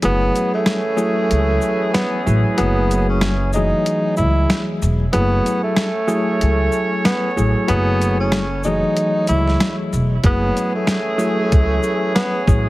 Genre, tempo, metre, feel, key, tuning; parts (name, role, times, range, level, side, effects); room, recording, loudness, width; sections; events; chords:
hip hop, boom-bap hip-hop; 94 BPM; 4/4; swing 61% on 16ths; F# minor; A4 = 440 Hz
breathy tenor saxophone; melody; 0.0-12.4 s; A3 to E4; -21 LUFS; right 1 dB; high-pass filter, low-pass filter, ping-pong delay
mellow tine electric piano; accompaniment; 0.0-12.7 s; E3 to G#4; -22 LUFS; left 1 dB; medium stereo tremolo, cassette tape, high-pass filter, low-pass filter
warm horn section; stabs; 0.0-12.7 s; E3 to C#5; -26 LUFS; right 1 dB; high-pass filter, low-pass filter, ping-pong delay
upright bass; bass; 0.0-12.6 s; E1 to C#2; -18 LUFS; equal
boom bap sampler-style drum kit; drums; 0.0-12.7 s; hi-hat, kick drum, shaker, snare drum; -19 LUFS; equal
light reverb, small room ambience; heavily compressed radio sound, multiband compression, vinyl crackle; -15 LUFS; side -18 dB against mid
0.0-12.7 A section
break 0.0-10.2
0.0 F#m9